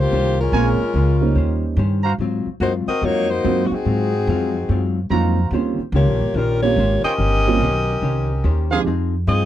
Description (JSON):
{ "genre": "jazz, big band swing", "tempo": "144 BPM", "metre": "4/4", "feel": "swing 65% on 8ths", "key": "Eb mixolydian", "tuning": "A4 = 441 Hz", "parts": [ { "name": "warm saxophone section", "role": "melody", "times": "0.0-9.5 s", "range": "G3 to Eb5", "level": "-21 LUFS", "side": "left 2 dB", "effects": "none" }, { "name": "upright bass", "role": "bass", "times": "0.0-9.5 s", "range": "G1 to Ab2", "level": "-20 LUFS", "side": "equal", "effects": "none" }, { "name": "vintage hollow-body jazz guitar", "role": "accompaniment", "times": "0.1-9.5 s", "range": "Ab2 to C5", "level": "-26 LUFS", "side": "left 6 dB", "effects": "none" }, { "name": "warm grand piano", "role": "accompaniment", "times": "0.5-8.8 s", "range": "F3 to C5", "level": "-21 LUFS", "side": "right 7 dB", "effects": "none" }, { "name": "mellow trumpet section", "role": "stabs", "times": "0.5-2.1, 5.1-8.8 s", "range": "Eb4 to Bb5", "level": "-22 LUFS", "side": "right 4 dB", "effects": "none" } ], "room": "light reverb", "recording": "dry, close 1970s-style studio recording", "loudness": "-16 LUFS", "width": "side -12 dB against mid", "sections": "0.0-9.5 A section", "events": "none", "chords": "0.0 Eb13; 2.2 Ab13; 5.5 Eb13; 8.9 Fm7" }